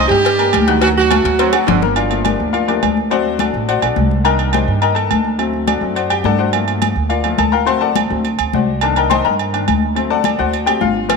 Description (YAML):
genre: latin, salsa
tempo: 210 BPM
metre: 4/4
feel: straight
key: unclear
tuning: A4 = 444 Hz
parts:
  - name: clear horn section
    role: melody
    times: 0.0-1.8 s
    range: F#3 to G4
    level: -16 LUFS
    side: right 4 dB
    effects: slapback echo
  - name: bright upright piano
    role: accompaniment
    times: 0.0-11.2 s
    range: Eb3 to F#6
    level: -18 LUFS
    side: left 9 dB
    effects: none
  - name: upright bass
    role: bass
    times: 0.0-11.2 s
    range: G1 to G2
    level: -19 LUFS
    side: right 2 dB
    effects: none
  - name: bright trombone section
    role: second line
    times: 0.1-1.8 s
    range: D3 to G3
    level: -23 LUFS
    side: right 12 dB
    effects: none
  - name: congas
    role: percussion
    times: 0.1-11.2 s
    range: none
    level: -22 LUFS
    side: left 9 dB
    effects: none
  - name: agogo bells and timbales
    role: percussion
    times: 0.2-11.2 s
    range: none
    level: -21 LUFS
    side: right 14 dB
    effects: none
  - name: cowbell and bongos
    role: percussion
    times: 0.3-1.9, 11.1-11.2 s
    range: none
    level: -23 LUFS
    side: left 12 dB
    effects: none
room: moderate plate reverb, RT60 2.7 s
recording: 1960s-style stereo with parts hard left and right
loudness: -13 LUFS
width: side -4 dB against mid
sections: 0.0-2.0 A section; 2.0-11.2 B section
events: drum fill 1.2-2.0; upright piano solo 2.0-11.2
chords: 0.0 Cm7; 0.8 D7; 2.0 Gm7; 3.1 D7; 4.2 Cm7; 5.4 D7; 6.5 Gm7; 7.7 D7; 8.8 Cm7; 10.0 D7